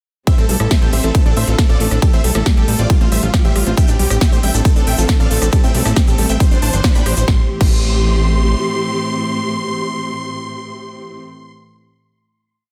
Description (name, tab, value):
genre	uplifting trance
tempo	137 BPM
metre	4/4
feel	straight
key	A minor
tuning	A4 = 440 Hz
part	big supersaw lead	melody	0.3-11.5 s	F4 to C6	-27 LUFS	equal	vintage 12-bit sampler grit, sidechain pumping, delay
part	supersaw stab	second line	0.3-11.5 s	F4 to C6	-33 LUFS	equal	none
part	warm symphonic string section	sustained chords	0.3-11.2 s	A2 to G4	-26 LUFS	equal	sidechain pumping
part	analog pluck	arpeggios	0.3-7.7 s	G3 to C5	-28 LUFS	equal	chorus, sidechain pumping, tape echo
part	big-room dance drum kit	drums	0.3-7.7 s	crash cymbal, hi-hat, ride cymbal, rim click, snare drum	-25 LUFS	equal	sidechain pumping on hats, sidechain pumping on cymbals
part	electronic kick drum	drums	0.3-7.7 s	none	-16 LUFS	equal	none
part	fat analog bass	bass	0.4-8.6 s	G1 to B1	-19 LUFS	equal	sidechain pumping
part	egg shaker	percussion	3.8-7.3 s	none	-30 LUFS	equal	none
room	digital ambience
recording	dense, heavily limited modern master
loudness	-15 LUFS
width	mono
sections	0.3-7.3 drop; 7.3-10.8 final chord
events	drop 0.3-7.3; band accent 6.8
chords	0.3 Am7; 1.1 Dm7/A; 2.0 Am7; 2.9 Fadd9/A; 3.8 Gsus4/A; 4.7 Dm7/A; 5.5 Am7; 6.4 Cadd9; 7.3 Am7